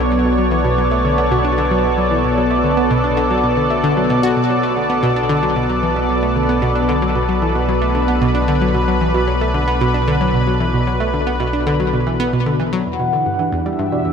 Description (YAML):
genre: ambient, sequencer-driven space music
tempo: 113 BPM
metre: 4/4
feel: straight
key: B minor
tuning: A4 = 440 Hz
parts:
  - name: lush unison pad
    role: sustained chords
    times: 0.0-14.1 s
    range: B2 to E5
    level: -17 LUFS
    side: equal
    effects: chorus
  - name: analog pluck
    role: riff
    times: 0.0-14.1 s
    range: E2 to F#4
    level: -19 LUFS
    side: left 1 dB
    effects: chorus, ping-pong delay
  - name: warm sub bass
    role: bass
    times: 0.0-14.1 s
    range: B1 to E2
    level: -23 LUFS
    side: equal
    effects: none
  - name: mellow horn-like synth lead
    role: melody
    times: 12.9-14.1 s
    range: D5 to F#5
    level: -20 LUFS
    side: left 2 dB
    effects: wide subtle chorus, ping-pong delay
  - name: pulsing gated texture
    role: texture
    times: 13.2-14.1 s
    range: D4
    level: -26 LUFS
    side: right 5 dB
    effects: chorus, built-in reverb
room: wet plate reverb, RT60 3.0 s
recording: echo-heavy mix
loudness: -14 LUFS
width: side -6 dB against mid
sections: 0.0-12.9 A section; 12.9-14.1 B section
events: none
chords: 0.0 Bm7; 12.9 Em7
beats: | 0.12 0.65 1.18 1.71 | 2.24 2.77 3.31 3.84 | 4.37 4.90 5.43 5.96 | 6.49 7.02 7.55 8.08 | 8.62 9.15 9.68 10.21 | 10.74 11.27 11.80 12.33 | 12.86 13.39 13.93